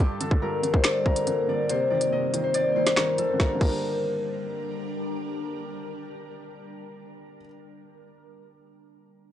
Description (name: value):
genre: hip hop, drill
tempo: 141 BPM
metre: 4/4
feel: half-time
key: G minor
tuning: A4 = 445 Hz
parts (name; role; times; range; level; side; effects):
- concert harp; melody; 0.0-5.7 s; G4 to D6; -25 LUFS; left 2 dB; analog delay
- felt-muted upright piano; accompaniment; 0.0-9.3 s; G2 to D4; -33 LUFS; right 2 dB; none
- ethereal airy pad; sustained chords; 0.1-7.2 s; Eb3 to C5; -35 LUFS; equal; ensemble chorus, built-in reverb, phaser
- drill drum kit; drums; 0.2-3.7 s; crash cymbal, finger snaps, hi-hat, kick drum, snare drum; -23 LUFS; equal; vintage 12-bit sampler grit
room: little or no reverb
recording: dry, gritty hardware recording, nothing above 10.5 kHz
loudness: -23 LUFS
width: side -11 dB against mid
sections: 0.0-3.4 A section; 3.4-6.8 B section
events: none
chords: 0.0 Gm; 1.7 Cm; 3.4 Gm